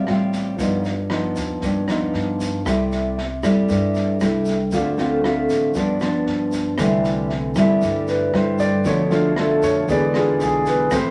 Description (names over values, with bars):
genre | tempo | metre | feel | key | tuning
bossa nova | 116 BPM | 4/4 | straight | C major | A4 = 440 Hz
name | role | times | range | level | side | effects
nylon-string guitar | accompaniment | 0.0-11.1 s | G2 to B4 | -22 LUFS | equal | none
upright bass | bass | 0.0-11.1 s | G1 to G2 | -34 LUFS | equal | none
open jazz drum kit | drums | 0.1-11.0 s | kick drum, rim click, snare drum | -34 LUFS | equal | none
egg shaker | percussion | 0.3-11.1 s | none | -44 LUFS | equal | none
clear concert grand piano | accompaniment | 6.8-11.1 s | D3 to D5 | -23 LUFS | equal | none
room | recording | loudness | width
wet studio reverb, RT60 0.6 s | none | -20 LUFS | mono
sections
0.0-6.8 A section; 6.8-11.1 B section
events
grand piano solo 6.8-11.1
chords
0.0 Dm7 (rootless); 0.6 Gaug7; 2.7 C6; 4.7 Dm7; 5.8 G7; 6.8 C6; 8.9 Bm7b5; 9.9 E7